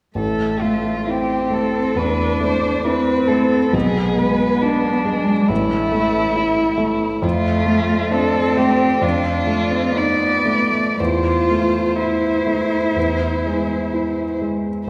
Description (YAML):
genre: classical, slow romantic movement for piano trio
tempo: 56-71 BPM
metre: 4/4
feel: rubato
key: A minor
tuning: A4 = 436 Hz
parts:
  - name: rich violin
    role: melody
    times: 0.2-14.4 s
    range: D4 to D5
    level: -24 LUFS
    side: equal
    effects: none
  - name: dark cello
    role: second line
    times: 0.2-14.4 s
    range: G#3 to F4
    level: -23 LUFS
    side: equal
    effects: none
  - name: warm grand piano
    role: accompaniment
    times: 0.2-14.9 s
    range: A1 to E4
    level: -23 LUFS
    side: equal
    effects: none
room: wet concert hall reverb, RT60 2.3 s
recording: heard from further back in the room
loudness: -18 LUFS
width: mono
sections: 0.2-14.9 A section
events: none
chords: 0.2 Am; 3.7 G#dim/B; 5.5 A5; 7.2 Dm/F; 9.0 F7; 11.0 Am/E; 13.0 E